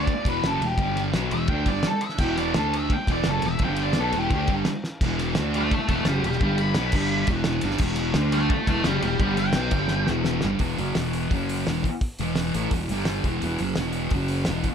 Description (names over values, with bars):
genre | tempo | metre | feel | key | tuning
garage rock duo or trio | 171 BPM | 4/4 | straight | E minor | A4 = 440 Hz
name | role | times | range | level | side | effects
octave-fuzz lead guitar | melody | 0.0-10.1 s | G4 to B5 | -28 LUFS | left 1 dB | distortion
thick fuzz guitar | riff | 0.0-14.7 s | E2 to D4 | -25 LUFS | right 1 dB | distortion
sustaining fretless electric bass | bass | 0.0-14.6 s | E1 to D2 | -29 LUFS | left 1 dB | lush chorus
cloth-damped thuddy drum kit | drums | 0.1-14.7 s | crash cymbal, hi-hat, kick drum, ride cymbal, snare drum | -27 LUFS | equal | none
room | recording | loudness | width
light reverb | none | -22 LUFS | side -7 dB against mid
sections
0.0-10.6 A section; 10.6-14.7 B section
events
lead electric guitar solo 0.0-10.6; drum fill 4.8, 9.9-10.6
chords
0.1 E5; 0.8 G5; 1.1 Em; 2.6 D5; 2.9 E5; 3.6 G5; 4.0 Em; 5.4 D5; 5.7 E5; 6.4 G5; 6.8 B5; 6.9 G5; 7.3 Em; 8.2 D5; 8.5 E5; 9.2 G5; 9.6 Gmaj7/B; 9.7 G5; 10.1 Em; 10.6 E5; 11.3 F#5; 11.7 E5; 12.9 G5; 13.2 E5; 14.1 F#5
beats
0.08 0.44 | 0.79 1.14 1.50 1.85 | 2.20 2.55 2.90 3.26 | 3.61 3.96 4.31 4.66 | 5.01 5.37 5.71 6.07 | 6.42 6.77 7.12 7.47 | 7.82 8.16 8.52 8.86 | 9.21 9.56 9.91 10.26 | 10.61 10.96 11.31 11.67 | 12.02 12.37 12.72 13.07 | 13.42 13.78 14.13 14.48